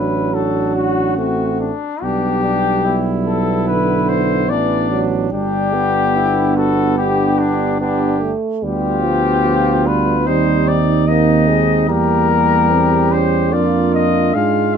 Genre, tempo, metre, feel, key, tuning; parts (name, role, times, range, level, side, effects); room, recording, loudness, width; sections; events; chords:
classical, brass quintet; 73 BPM; 4/4; straight; G major, C minor from 8.6 s; A4 = 441 Hz
mellow cornet; melody; 0.0-14.8 s; D4 to F5; -19 LUFS; left 7 dB
mellow trumpet; second line; 0.0-14.8 s; D4 to G4; -24 LUFS; right 7 dB
warm French horn; accompaniment; 0.0-14.8 s; Bb3 to D4; -22 LUFS; left 3 dB
warm trombone; accompaniment; 0.0-14.8 s; D3 to B3; -21 LUFS; right 4 dB
mellow tuba; bass; 0.0-14.8 s; G1 to Ab2; -19 LUFS; right 4 dB
moderate studio reverb, RT60 0.7 s; -14 LUFS; side -7 dB against mid
0.0-14.8 A section
0.0 D7/A; 2.0 G/B; 5.3 G; 8.6 G7/D; 10.3 Cm/Eb; 11.9 C7/E; 13.5 Fm